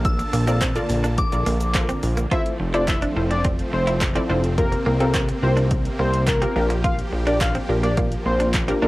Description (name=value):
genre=dance-pop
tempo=106 BPM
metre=4/4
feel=straight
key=G dorian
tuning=A4 = 439 Hz
part: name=soft synth bell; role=melody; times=0.0-2.0 s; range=D6 to E6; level=-29 LUFS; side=left 1 dB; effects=chorus, cassette tape, plate reverb, analog delay
part: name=wide unison pluck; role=accompaniment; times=0.0-8.9 s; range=C4 to D5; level=-26 LUFS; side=left 1 dB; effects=sidechain pumping, cassette tape, plate reverb
part: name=supersaw chords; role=sustained chords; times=0.0-8.9 s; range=C3 to A5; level=-30 LUFS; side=right 1 dB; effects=sidechain pumping, cassette tape, plate reverb
part: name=fat analog bass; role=bass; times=0.0-8.9 s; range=F1 to C2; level=-22 LUFS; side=equal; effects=sidechain pumping
part: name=punchy analog drum machine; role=drums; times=0.1-8.8 s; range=handclaps, hi-hat, kick drum, shaker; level=-24 LUFS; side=equal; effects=cassette tape
part: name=direct-recorded clean electric guitar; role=riff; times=0.2-8.9 s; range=Bb3 to F4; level=-28 LUFS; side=right 2 dB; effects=lush chorus, cassette tape
part: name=group handclap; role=percussion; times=0.6-8.7 s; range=none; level=-34 LUFS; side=right 3 dB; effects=none
part: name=fat analog lead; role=melody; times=2.3-8.5 s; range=Bb4 to F5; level=-25 LUFS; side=left 1 dB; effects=chorus, cassette tape, plate reverb
room=light reverb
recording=home recording on cassette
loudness=-18 LUFS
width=side -19 dB against mid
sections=0.0-2.3 A section; 2.3-8.9 B section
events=none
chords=0.0 Bbmaj7; 2.3 Fmaj7; 4.6 C7sus4; 6.6 Gm7/Bb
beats=| 0.05 0.62 1.18 1.75 | 2.31 2.88 3.45 4.01 | 4.58 5.14 5.71 6.28 | 6.84 7.41 7.97 8.54